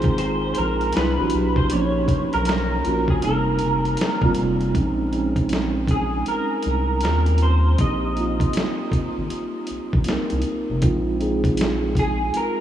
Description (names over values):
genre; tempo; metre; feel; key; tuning
R&B, neo-soul; 79 BPM; 4/4; swing 64% on 16ths; Bb dorian; A4 = 440 Hz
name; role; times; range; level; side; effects
electric guitar through a small old amp; melody; 0.0-12.6 s; Ab4 to Eb5; -26 LUFS; equal; ensemble chorus, diffuse ambient delay
mellow tine electric piano; accompaniment; 0.0-12.6 s; E#3 to Bb4; -24 LUFS; right 2 dB; medium stereo tremolo
round analog bass; bass; 0.0-12.3 s; F1 to Eb2; -23 LUFS; equal; none
dusty soul sampler-style drum kit; drums; 0.0-12.6 s; hi-hat, kick drum, snare drum; -26 LUFS; equal; none
room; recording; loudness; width
moderate huge ambient reverb, RT60 9.7 s; dreamy mix soaked in reverb, small room ambience; -19 LUFS; side -11 dB against mid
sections
0.0-4.7 A section; 4.7-12.6 B section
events
none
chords
0.0 Ab69; 0.9 Cmaj9#11; 1.7 Bmaj9#11/A#; 3.2 F9sus4; 4.7 Bbm11; 7.0 Eb13; 7.8 Abmaj9 (rootless); 10.8 Bb9sus4